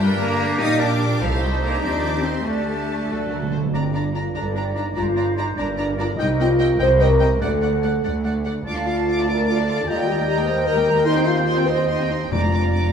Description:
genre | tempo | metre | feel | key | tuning
quick classical-period movement for symphony orchestra | 98 BPM (dotted quarters) | 6/8 | straight | G minor | A4 = 440 Hz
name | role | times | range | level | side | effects
rich studio violin section | melody | 0.0-12.9 s | G4 to D6 | -32 LUFS | right 1 dB | none
clear oboe | second line | 0.0-12.9 s | F#4 to Bb5 | -31 LUFS | equal | none
mellow flute section | second line | 0.0-12.9 s | Bb4 to F#5 | -30 LUFS | right 4 dB | none
rich studio violin section | second line | 0.0-12.9 s | Bb4 to Eb6 | -34 LUFS | equal | none
warm clarinet | second line | 0.0-12.9 s | Bb3 to Eb5 | -31 LUFS | equal | none
rich studio viola section | accompaniment | 0.0-12.9 s | G3 to Bb4 | -30 LUFS | left 1 dB | none
dark French horn section | sustained chords | 0.0-12.9 s | A2 to C5 | -23 LUFS | left 1 dB | none
rich studio double bass section | bass | 0.0-12.9 s | F1 to Bb2 | -25 LUFS | right 1 dB | none
rich symphonic cello section | bass | 0.0-12.9 s | C2 to Eb4 | -25 LUFS | equal | none
timpani | percussion | 3.1-3.7, 12.3-12.9 s | F2 to D3 | -24 LUFS | right 1 dB | none
room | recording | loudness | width
wet stone room reverb, RT60 1.1 s | heard from further back in the room | -18 LUFS | side -7 dB against mid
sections
0.0-3.7 A section; 3.7-12.9 B section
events
timpani fill 3.1-3.7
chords
0.0 Gm; 1.2 Cm; 2.5 Dsus4; 3.1 D; 3.7 Gm; 6.2 Cm; 7.4 D; 8.7 Dm; 9.9 Eb; 11.1 Cm/Eb; 12.3 Bb/F

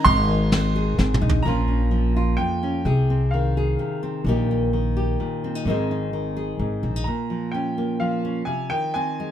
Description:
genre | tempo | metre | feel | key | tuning
acoustic folk duo or small band | 128 BPM | 3/4 | straight | Bb dorian | A4 = 440 Hz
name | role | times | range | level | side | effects
bright upright piano | melody | 0.0-4.0, 7.0-9.3 s | F5 to C6 | -26 LUFS | right 2 dB | none
nylon-string guitar | accompaniment | 0.0-9.3 s | F2 to Ab4 | -25 LUFS | equal | none
upright bass | bass | 0.1-7.0 s | Ab1 to C2 | -22 LUFS | equal | none
soft brush drum kit | drums | 0.1-1.4 s | kick drum, ride cymbal, snare drum, toms | -25 LUFS | right 1 dB | none
room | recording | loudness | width
light reverb | close, detailed microphones | -20 LUFS | side -10 dB against mid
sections
0.0-1.5 A section; 1.5-7.1 B section; 7.1-9.3 C section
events
drum fill 1.0-1.5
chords
0.1 Ab; 1.5 Bbm; 2.9 Ab/C; 4.3 Eb/Bb; 5.7 Ab; 7.1 Bbm; 8.5 Ab/C

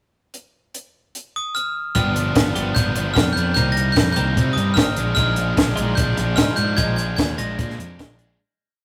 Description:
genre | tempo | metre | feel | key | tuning
indie rock | 149 BPM | 4/4 | straight | unclear | A4 = 440 Hz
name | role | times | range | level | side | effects
compact cocktail drum kit | drums | 0.3-8.3 s | hi-hat, kick drum, snare drum | -23 LUFS | equal | none
glockenspiel with brass mallets | melody | 1.4-8.2 s | Eb6 to Bb6 | -26 LUFS | equal | none
crunchy overdriven guitar | riff | 2.0-8.4 s | F3 to Eb4 | -29 LUFS | equal | none
twelve-string electric guitar | riff | 2.0-8.2 s | Eb3 to G4 | -32 LUFS | equal | none
fretless electric bass | bass | 2.0-8.4 s | G1 to C3 | -26 LUFS | equal | none
room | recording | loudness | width
moderate stone room reverb, RT60 0.9 s | rough rehearsal-room recording, warm saturation | -20 LUFS | mono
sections
0.3-1.9 pickup bar; 1.9-8.4 pre-chorus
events
fade-out 6.8-8.4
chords
0.3 N.C.; 1.9 G7; 3.6 Cm7; 5.0 Bb7sus4

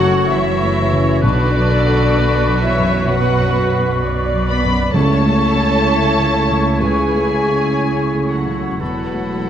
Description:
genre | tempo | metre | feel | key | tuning
cinematic, emotional film score for orchestra | 58-65 BPM | 4/4 | rubato | unclear | A4 = 442 Hz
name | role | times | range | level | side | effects
muted studio violin section | melody | 0.0-9.5 s | D5 to B5 | -23 LUFS | left 1 dB | none
clear clarinet | second line | 0.0-9.5 s | E4 to F#4 | -25 LUFS | right 1 dB | none
clear oboe | second line | 0.0-9.5 s | A4 to C#5 | -26 LUFS | right 2 dB | none
large flute ensemble | second line | 0.0-9.5 s | B5 to C#6 | -25 LUFS | left 2 dB | none
muted studio violin section | second line | 0.0-9.5 s | D4 to B4 | -27 LUFS | left 1 dB | none
felt-muted upright piano | accompaniment | 0.0-9.5 s | B1 to D5 | -22 LUFS | left 1 dB | none
muted studio viola section | accompaniment | 0.0-9.5 s | A3 to D5 | -25 LUFS | right 1 dB | none
mellow French horn section | sustained chords | 0.0-9.5 s | D3 to G#4 | -22 LUFS | left 4 dB | none
muted studio cello section | bass | 0.0-9.5 s | E2 to C#3 | -22 LUFS | right 2 dB | none
muted studio double bass section | bass | 0.0-9.5 s | E1 to C#2 | -22 LUFS | right 3 dB | none
timpani | percussion | 4.9-6.3 s | C#3 | -23 LUFS | right 3 dB | none
room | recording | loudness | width
wet scoring stage reverb, RT60 1.9 s | none | -13 LUFS | side -9 dB against mid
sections
0.0-9.5 A section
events
none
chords
0.0 F#m; 1.2 Bmadd9; 4.9 A/C#; 8.8 Esus4

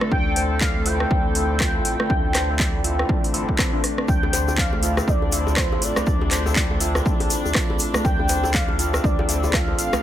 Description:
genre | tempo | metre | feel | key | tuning
afro house | 121 BPM | 4/4 | swing 59% on 16ths | D minor | A4 = 437 Hz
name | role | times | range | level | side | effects
dark studio string section | sustained chords | 0.0-10.0 s | D3 to A4 | -30 LUFS | left 1 dB | sidechain pumping
handpan | arpeggios | 0.0-10.0 s | A3 to D5 | -29 LUFS | left 2 dB | sidechain pumping
overdriven tine electric piano | stabs | 0.0-10.0 s | C4 to A4 | -31 LUFS | left 2 dB | phaser, sidechain pumping, dub echo
house drum kit | drums | 0.0-10.0 s | handclaps, hi-hat, rim click | -25 LUFS | equal | overdrive
expressive portamento lead | melody | 0.1-10.0 s | C5 to G5 | -28 LUFS | right 1 dB | analog chorus, dub echo
warm sub bass | bass | 0.1-9.9 s | A1 to D2 | -26 LUFS | equal | sidechain pumping
electronic kick drum | drums | 0.1-9.7 s | none | -23 LUFS | equal | overdrive
tube shaker | percussion | 4.1-10.0 s | none | -32 LUFS | left 4 dB | none
djembe | percussion | 4.2-10.0 s | none | -30 LUFS | left 2 dB | none
room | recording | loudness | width
little or no reverb | none | -18 LUFS | side -11 dB against mid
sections
0.0-10.0 A section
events
drum fill 3.8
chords
0.0 Dm7

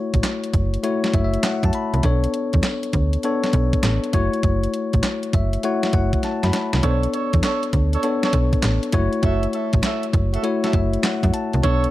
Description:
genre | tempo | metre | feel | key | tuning
R&B, new jack swing | 100 BPM | 4/4 | swing 67% on 16ths | unclear | A4 = 441 Hz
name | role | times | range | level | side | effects
bell-like tine electric piano | accompaniment | 0.0-11.9 s | A3 to B5 | -22 LUFS | left 3 dB | none
slap-like FM bass | bass | 0.1-11.9 s | F#1 to F#2 | -20 LUFS | right 1 dB | none
clean 12-bit digital drum machine | drums | 0.1-11.9 s | handclaps, hi-hat, kick drum, snare drum | -22 LUFS | right 1 dB | overdrive
mellow horn section | stabs | 6.8-11.8 s | D4 to E5 | -27 LUFS | right 6 dB | none
room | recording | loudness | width
light reverb | dark, warm production | -18 LUFS | side -15 dB against mid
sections
0.0-11.9 A section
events
tine electric piano fill 0.8-2.0, 5.0-6.8, 10.4-11.6; drum fill 6.2-6.8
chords
0.0 F#m7; 2.0 Bm9; 4.1 F#m7; 6.8 Bm9; 8.9 F#m7

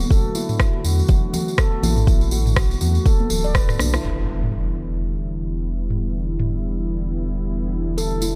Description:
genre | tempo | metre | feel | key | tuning
afro house | 122 BPM | 4/4 | swing 58% on 16ths | E minor | A4 = 444 Hz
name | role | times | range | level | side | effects
warm analog pad | sustained chords | 0.0-8.4 s | D3 to F#4 | -30 LUFS | equal | chorus, sidechain pumping
warm sub bass | bass | 0.0-8.4 s | D1 to E2 | -25 LUFS | equal | sidechain pumping
congas | percussion | 0.0-4.0, 8.2-8.3 s | none | -30 LUFS | equal | none
tambourine | percussion | 0.0-4.0, 8.0-8.3 s | none | -34 LUFS | equal | none
handpan | arpeggios | 0.1-4.0, 8.0-8.3 s | D4 to D5 | -31 LUFS | equal | sidechain pumping, dub echo
electronic kick drum | drums | 0.1-3.7 s | none | -20 LUFS | equal | none
afro-pop drum kit | drums | 0.5-6.5 s | rim click, toms | -27 LUFS | equal | low-pass filter on toms, low-pass filter on snare
impact | sound effects | 4.0-6.0 s | none | -33 LUFS | equal | none
room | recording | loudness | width
small room ambience | none | -21 LUFS | mono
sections
0.0-4.0 A section; 4.0-8.4 B section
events
drum fill 3.7-4.0; band accent 3.9; impact 4.0-6.0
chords
0.0 Bm7; 4.0 Em7

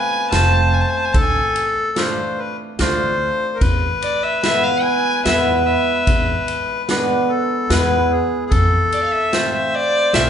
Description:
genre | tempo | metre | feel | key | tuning
klezmer | 73 BPM | 3/4 | straight | E phrygian dominant | A4 = 439 Hz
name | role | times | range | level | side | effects
rich violin | melody | 0.0-10.3 s | D5 to A5 | -19 LUFS | right 1 dB | none
accordion | second line | 0.0-10.3 s | G#4 to C5 | -21 LUFS | left 3 dB | none
cimbalom | accompaniment | 0.3-10.3 s | G#3 to F4 | -22 LUFS | right 1 dB | none
upright bass | bass | 0.3-10.3 s | F1 to F2 | -20 LUFS | equal | none
street-band drum kit | drums | 0.3-10.3 s | kick drum, ride cymbal, snare drum | -22 LUFS | equal | none
room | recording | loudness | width
wet large studio reverb, RT60 1.1 s | band playing live in one room, nothing above 10.5 kHz | -15 LUFS | side -8 dB against mid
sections
0.0-10.3 A section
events
none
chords
0.0 F; 1.1 Dm; 3.6 E; 8.5 F

